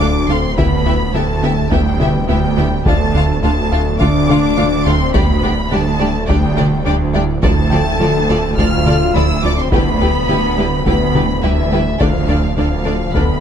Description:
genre	cinematic, hybrid orchestral and electronic film score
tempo	105 BPM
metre	4/4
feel	straight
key	D dorian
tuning	A4 = 440 Hz
part	warm symphonic violin section	melody	0.0-13.4 s	E5 to F6	-22 LUFS	equal	none
part	warm symphonic violin section	second line	0.0-13.2 s	F4 to F5	-24 LUFS	left 3 dB	none
part	rich symphonic viola section	accompaniment	0.0-13.2 s	D3 to F4	-23 LUFS	right 3 dB	none
part	mellow French horn section	sustained chords	0.0-13.4 s	E3 to F4	-21 LUFS	left 5 dB	none
part	plucky analog bass	riff	0.0-13.3 s	D2 to D3	-20 LUFS	left 2 dB	none
part	detuned saw bass	bass	0.0-13.4 s	D1	-23 LUFS	equal	none
part	rich symphonic cello section	bass	0.0-13.4 s	D2	-22 LUFS	right 3 dB	none
part	warm symphonic double bass section	bass	0.0-13.4 s	D2	-20 LUFS	right 5 dB	none
part	impact	sound effects	0.0-0.6 s	none	barely audible	none	none
part	dark grand piano	texture	0.0-13.4 s	B3 to F6	-31 LUFS	left 2 dB	none
part	solo taiko drums	drums	0.6-13.4 s	none	-21 LUFS	equal	none
room	light reverb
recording	close, detailed microphones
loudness	-12 LUFS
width	side -8 dB against mid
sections	0.0-13.4 A section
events	impact 0.0-0.6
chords	0.0 Dm; 0.6 Em/D; 2.9 Dm; 5.1 G/D; 7.4 Dm; 9.7 Em/D; 12.0 Dm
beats	0.00 | 0.57 1.15 1.72 2.29 | 2.86 3.43 4.00 4.58 | 5.15 5.72 6.29 6.86 | 7.43 8.00 8.57 9.15 | 9.72 10.29 10.86 11.43 | 12.00 12.57 13.15

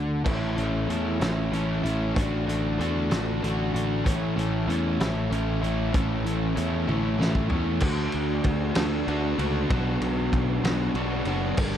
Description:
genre	indie rock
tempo	64 BPM (dotted quarters)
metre	6/8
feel	straight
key	D major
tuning	A4 = 439 Hz
part	overdriven electric guitar	riff	0.0-11.8 s	A2 to G4	-26 LUFS	equal	none
part	picked electric bass	bass	0.0-11.8 s	F#1 to E2	-28 LUFS	equal	none
part	loose indie drum kit	drums	0.3-11.7 s	crash cymbal, hi-hat, kick drum, ride cymbal, snare drum, toms	-29 LUFS	equal	none
room	light reverb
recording	dark, warm production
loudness	-23 LUFS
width	side -10 dB against mid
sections	0.3-7.8 A section; 7.8-11.8 B section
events	drum fill 6.9-7.8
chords	0.3 A; 2.2 D/A; 4.0 A; 7.8 D; 9.7 Bm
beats	| 0.26 1.21 | 2.15 3.10 | 4.05 4.99 | 5.93 6.88 | 7.82 8.76 | 9.70 10.64 | 11.58

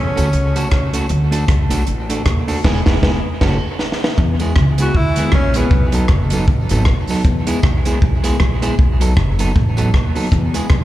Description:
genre	ska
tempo	156 BPM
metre	4/4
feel	swing 58% on 8ths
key	unclear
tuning	A4 = 440 Hz
part	breathy tenor saxophone	melody	0.0-0.9, 4.8-6.1 s	B3 to F#4	-23 LUFS	equal	dub echo, slapback echo
part	upright bass	bass	0.0-10.8 s	E1 to E2	-17 LUFS	equal	none
part	semi-hollow electric guitar	accompaniment	0.2-10.7 s	F#3 to A4	-22 LUFS	right 2 dB	dub echo, slapback echo
part	compact cocktail drum kit	drums	0.2-10.8 s	crash cymbal, hi-hat, kick drum, rim click, snare drum	-16 LUFS	equal	none
part	tambourine	percussion	0.2-10.6 s	none	-36 LUFS	left 1 dB	dub echo
room	studio reverb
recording	live gig heard through the venue's PA, club reverb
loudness	-13 LUFS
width	side -14 dB against mid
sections	0.0-4.2 A section; 4.2-10.8 B section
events	band accent 2.6-4.2; drum fill 3.8-4.2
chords	0.0 F#m; 1.1 D; 2.6 E; 3.4 F#m; 4.2 E; 5.7 B7; 7.3 E; 8.8 B7; 10.3 E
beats	0.33 0.72 | 1.10 1.49 1.87 2.26 | 2.65 3.03 3.42 3.80 | 4.18 4.57 4.95 5.34 | 5.72 6.11 6.49 6.87 | 7.26 7.64 8.02 8.41 | 8.79 9.18 9.56 9.94 | 10.32 10.71

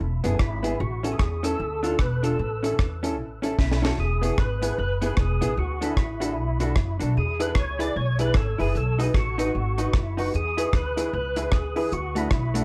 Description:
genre	ska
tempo	151 BPM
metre	4/4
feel	swing 61% on 8ths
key	unclear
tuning	A4 = 440 Hz
part	upright bass	bass	0.0-12.6 s	E1 to E2	-29 LUFS	equal	none
part	vintage hollow-body jazz guitar	accompaniment	0.2-12.6 s	A3 to B4	-34 LUFS	equal	none
part	dark upright piano	stabs	0.2-12.6 s	B3 to B4	-34 LUFS	equal	dub echo
part	deep reggae drum kit	drums	0.2-12.6 s	hi-hat, kick drum, rim click, snare drum	-27 LUFS	equal	none
part	percussive tonewheel organ	melody	0.4-12.6 s	E4 to D5	-32 LUFS	equal	overdrive, chorus vibrato, slow rotary speaker, dub echo
room	moderate studio reverb, RT60 0.6 s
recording	none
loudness	-25 LUFS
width	mono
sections	0.0-4.0 A section; 4.0-12.6 B section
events	drum fill 3.6-4.0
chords	0.0 E; 0.8 A; 1.6 Dm; 2.4 A; 4.0 E; 5.6 D; 7.2 E; 8.7 B; 10.3 E; 11.9 D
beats	0.00 0.40 | 0.80 1.19 1.59 1.99 | 2.39 2.79 3.19 3.58 | 3.98 4.38 4.78 5.17 | 5.57 5.97 6.37 6.76 | 7.16 7.56 7.95 8.35 | 8.75 9.14 9.54 9.94 | 10.33 10.73 11.12 11.52 | 11.91 12.31

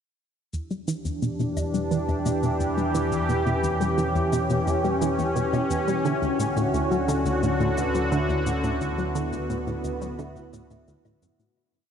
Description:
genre	ambient, sequencer-driven space music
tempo	87 BPM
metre	4/4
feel	straight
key	E dorian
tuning	A4 = 439 Hz
part	sweeping resonant pad	sustained chords	1.0-11.5 s	D3 to G4	-25 LUFS	equal	chorus, shimmer reverb
part	vibraphone with soft mallets	arpeggios	0.5-11.5 s	E4 to E5	-37 LUFS	right 4 dB	auto-pan, analog delay, shimmer reverb
part	hollow square pluck	riff	0.5-11.5 s	D2 to G3	-27 LUFS	equal	chorus, analog delay
part	round analog bass	bass	0.5-11.5 s	D2 to E2	-33 LUFS	equal	none
part	shaker and woodblock	percussion	0.5-11.5 s	none	-42 LUFS	left 5 dB	analog delay
room	wet huge ambient reverb, RT60 7.5 s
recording	dreamy mix soaked in reverb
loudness	-22 LUFS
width	side -8 dB against mid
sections	0.5-11.6 A section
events	fade-in on vibraphone 0.5-11.6; fade-out 7.9-11.6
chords	0.5 Em7; 6.0 Dmaj7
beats	| 0.53 1.22 1.91 2.60 | 3.29 3.98 4.67 5.36 | 6.05 6.74 7.43 8.12 | 8.81 9.50 10.19 10.88

